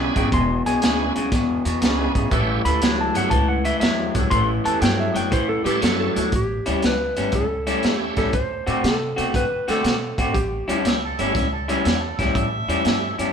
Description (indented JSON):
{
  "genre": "electric blues shuffle",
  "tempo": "120 BPM",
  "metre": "4/4",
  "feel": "swing 67% on 8ths",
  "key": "A mixolydian",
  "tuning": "A4 = 439 Hz",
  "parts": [
    { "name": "clean lap steel guitar", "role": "melody", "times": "0.0-10.8 s", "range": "F#4 to C6", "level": "-25 LUFS", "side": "equal", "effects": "none" },
    { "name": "bright tonewheel organ", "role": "accompaniment", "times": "0.0-13.2 s", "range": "G3 to A4", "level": "-28 LUFS", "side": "right 5 dB", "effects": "slow rotary speaker, chorus vibrato" },
    { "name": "electric guitar through a small old amp", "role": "riff", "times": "0.0-13.3 s", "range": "E2 to F#4", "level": "-23 LUFS", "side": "left 2 dB", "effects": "spring reverb" },
    { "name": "upright bass", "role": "bass", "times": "0.0-13.3 s", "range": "E1 to D3", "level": "-27 LUFS", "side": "equal", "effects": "none" },
    { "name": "warm horn section", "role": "stabs", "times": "0.2-6.3 s", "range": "G#3 to A4", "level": "-31 LUFS", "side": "right 5 dB", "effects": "none" },
    { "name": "crunchy breakbeat drum kit", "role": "drums", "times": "0.2-13.3 s", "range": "hi-hat, kick drum, snare drum", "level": "-24 LUFS", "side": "right 1 dB", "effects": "none" },
    { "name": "warm harmonica", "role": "second line", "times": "10.9-13.3 s", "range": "A4 to E5", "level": "-28 LUFS", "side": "right 2 dB", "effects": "overdrive" }
  ],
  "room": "moderate studio reverb, RT60 0.9 s",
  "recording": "band playing live in one room",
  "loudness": "-18 LUFS",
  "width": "side -7 dB against mid",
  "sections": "0.0-6.3 A section; 6.3-13.3 B section",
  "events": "electric slide guitar solo 0.0-6.3",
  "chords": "0.0 E7; 2.3 A7; 8.3 D7; 10.3 A7",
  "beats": "| 0.32 0.82 1.32 1.82 | 2.32 2.82 3.32 3.82 | 4.32 4.82 5.32 5.83 | 6.33 6.83 7.33 7.83 | 8.33 8.83 9.34 9.84 | 10.34 10.84 11.34 11.85 | 12.35 12.85"
}